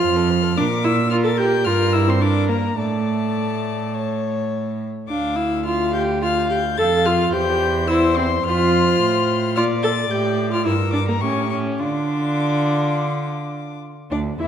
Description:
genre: quick classical-period movement for string quartet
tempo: 106 BPM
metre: 4/4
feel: uneven beats, rubato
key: D minor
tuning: A4 = 439 Hz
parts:
  - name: rich violin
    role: melody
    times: 0.0-14.5 s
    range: D5 to A6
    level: -27 LUFS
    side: left 10 dB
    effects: none
  - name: warm violin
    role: second line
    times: 0.0-14.5 s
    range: D4 to F5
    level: -26 LUFS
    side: left 4 dB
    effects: none
  - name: warm viola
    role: accompaniment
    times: 0.0-14.5 s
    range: A3 to A4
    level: -21 LUFS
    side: right 1 dB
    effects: none
  - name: rich cello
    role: bass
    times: 0.0-14.5 s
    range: D2 to D3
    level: -22 LUFS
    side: right 3 dB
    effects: none
room: wet scoring stage reverb, RT60 1.7 s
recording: none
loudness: -17 LUFS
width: side -9 dB against mid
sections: 0.0-14.1 A section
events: none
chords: 0.0 F; 0.6 Bb(#11); 1.7 Gm; 2.8 D5/A; 5.1 Dm; 7.3 C/E; 8.4 F; 9.6 Bb; 10.6 Gm; 11.2 A7; 11.8 Dm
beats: 0.02 | 0.57 1.11 1.66 2.21 | 2.77 3.35 3.93 4.51 | 5.09 5.66 6.22 6.78 | 7.33 7.88 8.45 9.01 | 9.55 10.10 10.65 11.21 | 11.79 12.37 12.95 13.52 | 14.11

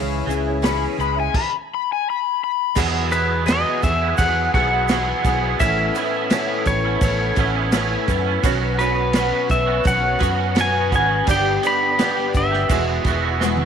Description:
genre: folk rock and heartland rock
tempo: 85 BPM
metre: 4/4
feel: straight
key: E major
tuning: A4 = 439 Hz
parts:
  - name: dark baby grand piano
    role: accompaniment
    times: 0.0-1.3, 8.4-13.7 s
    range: C#4 to E5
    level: -31 LUFS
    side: right 14 dB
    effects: none
  - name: picked twelve-string acoustic guitar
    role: accompaniment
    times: 0.0-13.7 s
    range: B2 to B4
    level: -25 LUFS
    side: left 11 dB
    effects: none
  - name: dark studio string section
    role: sustained chords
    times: 0.0-13.7 s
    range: G#3 to B4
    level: -33 LUFS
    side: equal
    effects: none
  - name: twangy electric guitar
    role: riff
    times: 0.0-13.7 s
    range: E2 to G4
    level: -24 LUFS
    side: right 17 dB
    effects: ensemble chorus
  - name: fingered electric bass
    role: bass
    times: 0.0-13.6 s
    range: E1 to F#2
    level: -24 LUFS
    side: right 1 dB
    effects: none
  - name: tube shaker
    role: percussion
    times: 0.3-13.6 s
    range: none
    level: -39 LUFS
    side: left 12 dB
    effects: none
  - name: vintage drum kit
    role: drums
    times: 0.6-13.7 s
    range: crash cymbal, hi-hat, kick drum, snare drum, toms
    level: -24 LUFS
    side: right 1 dB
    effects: none
  - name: overdriven slide guitar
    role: second line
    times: 0.7-2.8 s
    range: G#5 to B5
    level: -22 LUFS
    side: left 13 dB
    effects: none
  - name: pedal steel guitar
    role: melody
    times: 3.1-13.7 s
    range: B4 to B5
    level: -21 LUFS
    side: equal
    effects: none
room: light reverb, small room ambience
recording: 1960s-style stereo with parts hard left and right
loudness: -17 LUFS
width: side -7 dB against mid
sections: 0.0-2.8 A section; 2.8-13.7 B section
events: electric slide guitar solo 0.0-2.8; drum fill 13.4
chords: 0.0 C#m; 2.8 Eadd9; 5.6 Aadd9; 8.4 Bsus2; 11.3 G; 12.7 Eadd9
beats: 0.64 1.35 2.06 | 2.77 3.47 4.18 4.89 | 5.60 6.31 7.02 7.73 | 8.44 9.15 9.86 10.57 | 11.28 11.99 12.70 13.41

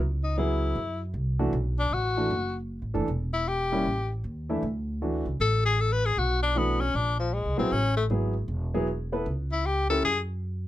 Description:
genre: jazz, small-group swing and bop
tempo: 155 BPM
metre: 4/4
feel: swing 64% on 8ths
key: A major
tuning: A4 = 438 Hz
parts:
  - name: upright bass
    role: bass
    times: 0.0-10.7 s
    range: E1 to F#2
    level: -28 LUFS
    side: equal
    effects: none
  - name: breathy tenor saxophone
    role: melody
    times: 0.2-10.2 s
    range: F3 to B4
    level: -27 LUFS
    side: left 4 dB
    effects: none
  - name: warm baby grand piano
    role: accompaniment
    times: 0.4-10.0 s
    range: E3 to B4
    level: -29 LUFS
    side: right 1 dB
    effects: none
room: light reverb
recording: close, detailed microphones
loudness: -25 LUFS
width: side -14 dB against mid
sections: 0.0-10.7 A section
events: none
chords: 0.0 C#m7; 0.8 D9; 1.5 Bm7; 3.1 Em; 3.8 A5; 4.6 D; 6.2 Bm7; 6.9 Bbsus2; 7.7 Asus2; 9.3 C#dim; 10.0 F#sus2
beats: 0.37 0.76 1.14 | 1.53 1.92 2.30 2.69 | 3.08 3.46 3.85 4.24 | 4.62 5.01 5.39 5.78 | 6.17 6.55 6.94 7.33 | 7.71 8.10 8.49 8.87 | 9.26 9.64 10.03 10.42

